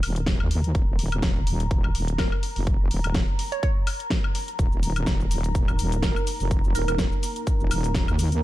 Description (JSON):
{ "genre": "bass house", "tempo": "125 BPM", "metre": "4/4", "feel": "swing 55% on 16ths", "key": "unclear", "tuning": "A4 = 440 Hz", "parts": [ { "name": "wobble bass", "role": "bass", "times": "0.0-8.4 s", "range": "Eb1 to Eb2", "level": "-25 LUFS", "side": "equal", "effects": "chorus, overdrive, sidechain pumping" }, { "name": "big-room dance drum kit", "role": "drums", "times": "0.0-8.4 s", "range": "hi-hat, shaker, snare drum, woodblock", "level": "-30 LUFS", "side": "left 1 dB", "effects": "small room ambience" }, { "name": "deep dark ambient pad", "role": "texture", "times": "0.0-8.4 s", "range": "Bb5", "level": "-36 LUFS", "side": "equal", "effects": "chorus, built-in reverb, sidechain pumping" }, { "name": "electronic kick drum", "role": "drums", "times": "0.3-8.1 s", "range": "none", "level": "-24 LUFS", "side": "equal", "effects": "small room ambience" }, { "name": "glassy wavetable pluck", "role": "melody", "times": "2.2-7.0 s", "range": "Bb4 to Db5", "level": "-32 LUFS", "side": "right 6 dB", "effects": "chorus, ping-pong delay" }, { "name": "dark analog pad", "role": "sustained chords", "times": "4.8-8.4 s", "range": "Bb3 to Bb4", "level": "-35 LUFS", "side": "equal", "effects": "chorus, sidechain pumping" } ], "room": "little or no reverb", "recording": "dark, warm production", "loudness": "-22 LUFS", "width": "side -15 dB against mid", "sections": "0.0-8.4 A section", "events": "filter sweep on wobble bass 0.0-8.4", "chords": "0.0 Eb5", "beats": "0.27 | 0.75 1.23 1.71 2.19 | 2.67 3.15 3.63 4.11 | 4.59 5.07 5.55 6.03 | 6.51 6.99 7.47 7.95 | 8.43" }